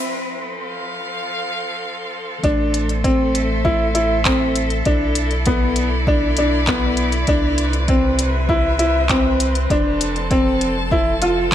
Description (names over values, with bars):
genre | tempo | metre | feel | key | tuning
piano and strings electronica | 99 BPM | 4/4 | straight | A minor | A4 = 442 Hz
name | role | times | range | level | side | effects
warm string quartet | sustained chords | 0.0-11.5 s | C3 to A5 | -24 LUFS | equal | none
clear upright piano | riff | 2.4-11.5 s | B3 to F4 | -19 LUFS | left 1 dB | ping-pong delay
warm sub bass | bass | 2.4-11.5 s | F1 to C2 | -22 LUFS | equal | sidechain pumping
electronic kick drum | drums | 2.4-11.5 s | none | -22 LUFS | equal | none
organic electronic drum kit | drums | 2.4-11.5 s | handclaps, hi-hat | -24 LUFS | left 1 dB | high-pass filter on hats, high-pass filter on snare, high-pass filter on room
room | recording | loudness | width
light reverb | high-pass filter | -16 LUFS | side -11 dB against mid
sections
0.0-2.4 A section; 2.4-11.5 B section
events
build-up 0.0-2.4; break 0.0-2.4; drop 2.4-11.5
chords
0.0 F; 2.4 Am; 4.9 E7sus4/B; 7.3 Cmaj7; 9.7 F